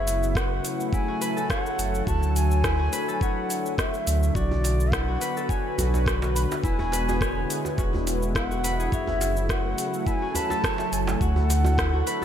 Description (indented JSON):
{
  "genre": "organic downtempo",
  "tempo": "105 BPM",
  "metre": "4/4",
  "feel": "swing 54% on 16ths",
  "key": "F# minor",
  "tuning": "A4 = 440 Hz",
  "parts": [
    { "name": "breathy bansuri", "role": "melody", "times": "0.0-12.2 s", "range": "D5 to B5", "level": "-31 LUFS", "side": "equal", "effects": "diffuse ambient delay" },
    { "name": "warm analog pad", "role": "sustained chords", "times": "0.0-12.2 s", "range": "C#3 to B4", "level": "-30 LUFS", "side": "equal", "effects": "chorus, sidechain pumping" },
    { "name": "concert harp", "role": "arpeggios", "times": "0.0-12.2 s", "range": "E4 to C#5", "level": "-32 LUFS", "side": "left 5 dB", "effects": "diffuse ambient delay" },
    { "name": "warm sub bass", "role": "bass", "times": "0.0-12.0 s", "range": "E1 to D2", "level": "-25 LUFS", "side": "equal", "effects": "sidechain pumping" },
    { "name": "afro-pop drum kit", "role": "drums", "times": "0.1-12.2 s", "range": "hi-hat, rim click, shaker", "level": "-32 LUFS", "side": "equal", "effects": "none" },
    { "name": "electronic kick drum", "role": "drums", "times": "0.4-11.9 s", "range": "none", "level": "-28 LUFS", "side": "equal", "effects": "none" },
    { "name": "djembe", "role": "percussion", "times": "4.5-12.2 s", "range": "none", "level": "-34 LUFS", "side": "right 3 dB", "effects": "none" }
  ],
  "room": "moderate lush hall reverb, RT60 2.6 s",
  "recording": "dreamy mix soaked in reverb, faint mains hum",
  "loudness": "-22 LUFS",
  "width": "side -9 dB against mid",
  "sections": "0.0-12.2 A section",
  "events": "none",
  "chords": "0.0 F#m7; 2.1 Dadd9; 4.4 Bm; 6.6 E7; 8.9 F#m7; 11.2 Dadd9"
}